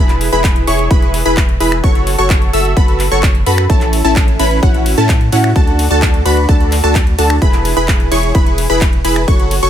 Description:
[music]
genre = EDM, festival progressive house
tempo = 129 BPM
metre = 4/4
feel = straight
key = unclear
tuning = A4 = 440 Hz
[part]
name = wide unison pluck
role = arpeggios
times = 0.0-9.7 s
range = F#5 to E6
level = -20 LUFS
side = equal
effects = cassette tape, sidechain pumping, digital delay
[part]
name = supersaw stab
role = riff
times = 0.0-9.7 s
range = C#4 to E5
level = -16 LUFS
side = equal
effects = sidechain pumping, digital delay
[part]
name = saturated sub bass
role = bass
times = 0.0-9.7 s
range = E1 to A2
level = -16 LUFS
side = equal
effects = sidechain pumping
[part]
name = big-room dance drum kit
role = drums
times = 0.1-9.7 s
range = finger snaps, handclaps, hi-hat, ride cymbal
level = -22 LUFS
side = equal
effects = none
[part]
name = electronic kick drum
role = drums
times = 0.4-9.4 s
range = none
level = -12 LUFS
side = equal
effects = none
[sound]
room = little or no reverb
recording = none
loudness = -10 LUFS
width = side -10 dB against mid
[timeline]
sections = 0.0-9.7 A section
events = none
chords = 0.0 E; 1.8 F#m; 3.7 A; 5.6 D; 7.4 E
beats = 0.44 0.91 1.37 | 1.84 2.30 2.77 3.23 | 3.70 4.16 4.63 5.09 | 5.56 6.02 6.49 6.95 | 7.42 7.88 8.35 8.81 | 9.28

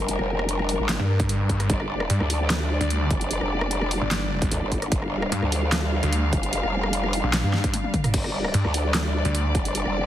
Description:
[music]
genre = heavy wobble dubstep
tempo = 149 BPM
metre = 4/4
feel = half-time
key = G minor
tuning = A4 = 443 Hz
[part]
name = rich studio string section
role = sustained chords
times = 0.0-10.1 s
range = G3 to F5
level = -28 LUFS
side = left 1 dB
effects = sidechain pumping, low-pass filter
[part]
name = growl bass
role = bass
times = 0.0-10.1 s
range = F1 to D2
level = -25 LUFS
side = equal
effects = chorus, overdrive
[part]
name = big-room dance drum kit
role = drums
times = 0.1-9.9 s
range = crash cymbal, handclaps, hi-hat, rim click, snare drum, toms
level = -28 LUFS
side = equal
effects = overdrive, small room ambience
[part]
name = snarling distorted saw bass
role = bass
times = 1.0-9.5 s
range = G1 to G2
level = -23 LUFS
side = equal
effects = distortion, overdrive
[part]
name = electronic kick drum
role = drums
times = 1.2-9.6 s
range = none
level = -27 LUFS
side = equal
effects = overdrive, small room ambience
[sound]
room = little or no reverb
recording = heavily compressed radio sound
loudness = -21 LUFS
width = side -12 dB against mid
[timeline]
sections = 0.0-10.1 A section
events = drum fill 7.7-8.1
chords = 0.0 G5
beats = | 0.09 0.49 0.89 1.29 | 1.70 2.10 2.50 2.90 | 3.31 3.71 4.11 4.51 | 4.92 5.32 5.72 6.13 | 6.53 6.93 7.33 7.74 | 8.14 8.54 8.94 9.35 | 9.75

